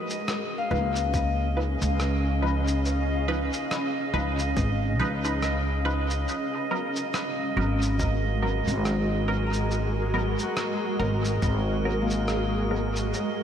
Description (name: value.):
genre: ambient dub.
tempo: 70 BPM.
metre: 4/4.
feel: swing 58% on 16ths.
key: G# dorian.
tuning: A4 = 440 Hz.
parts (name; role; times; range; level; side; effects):
granular cloud pad; sustained chords; 0.0-13.4 s; G#3 to E#5; -30 LUFS; right 1 dB; built-in reverb.
Celtic harp; arpeggios; 0.0-4.0, 9.5-13.4 s; G#3 to A#5; -34 LUFS; left 5 dB; dub echo.
filtered dub chord stab; stabs; 0.0-12.9 s; E#3 to B4; -33 LUFS; right 1 dB; phaser, dub echo.
drifting glass-harmonics texture; texture; 0.0-13.4 s; D#5; -35 LUFS; right 3 dB; chorus, built-in reverb.
electronic cabasa and rim click; drums; 0.1-13.3 s; none; -36 LUFS; equal; studio reverb, dub echo.
upright bass; bass; 0.7-13.1 s; G#1 to C#2; -26 LUFS; equal; none.
electronic kick drum; drums; 1.1-11.6 s; none; -29 LUFS; equal; studio reverb.
room: moderate lush hall reverb, RT60 2.8 s.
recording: dreamy mix soaked in reverb.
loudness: -24 LUFS.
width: side -9 dB against mid.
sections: 0.0-13.4 A section.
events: none.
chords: 0.0 C#9; 6.3 G#m9.